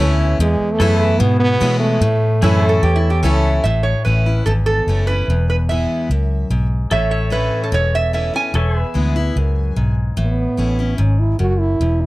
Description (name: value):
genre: honky-tonk and classic country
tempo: 147 BPM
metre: 4/4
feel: straight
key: A major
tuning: A4 = 440 Hz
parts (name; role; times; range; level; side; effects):
- picked steel-string acoustic guitar; accompaniment; 0.0-12.1 s; E2 to E4; -21 LUFS; left 2 dB; none
- warm concert grand piano; accompaniment; 0.0-3.6 s; E4 to C#5; -26 LUFS; right 4 dB; none
- pedal steel guitar; sustained chords; 0.0-3.6, 6.9-10.2 s; G#4 to E5; -26 LUFS; left 1 dB; none
- vintage muted fingered electric bass; bass; 0.0-12.1 s; E1 to B2; -17 LUFS; equal; none
- warm French horn; melody; 0.4-3.2, 10.2-12.1 s; G#3 to F#4; -19 LUFS; right 2 dB; none
- lap resonator guitar; second line; 2.4-9.9 s; E4 to G#5; -21 LUFS; right 3 dB; none
room: little or no reverb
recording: dry, close 1970s-style studio recording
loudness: -14 LUFS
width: side -18 dB against mid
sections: 0.0-3.6 A section; 3.6-10.2 B section; 10.2-12.1 C section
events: resonator guitar played with a steel bar solo 3.6-10.2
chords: 0.4 E; 2.0 A; 5.3 E; 6.9 A; 8.5 E; 10.2 A